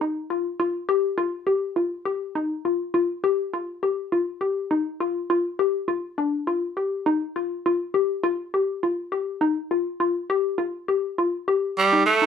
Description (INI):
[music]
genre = afrobeat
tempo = 102 BPM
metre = 4/4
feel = swing 55% on 16ths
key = F mixolydian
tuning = A4 = 440 Hz
[part]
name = hollow square pluck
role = arpeggios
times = 0.0-12.3 s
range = D4 to G4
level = -23 LUFS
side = left 4 dB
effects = chorus
[part]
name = raspy tenor saxophone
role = melody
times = 11.8-12.3 s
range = G3 to A3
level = -16 LUFS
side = right 3 dB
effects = none
[sound]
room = light reverb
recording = band playing live in one room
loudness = -22 LUFS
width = side -7 dB against mid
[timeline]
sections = 0.0-11.8 A section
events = none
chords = 0.0 Fsus2; 5.9 Dm; 7.1 Fsus2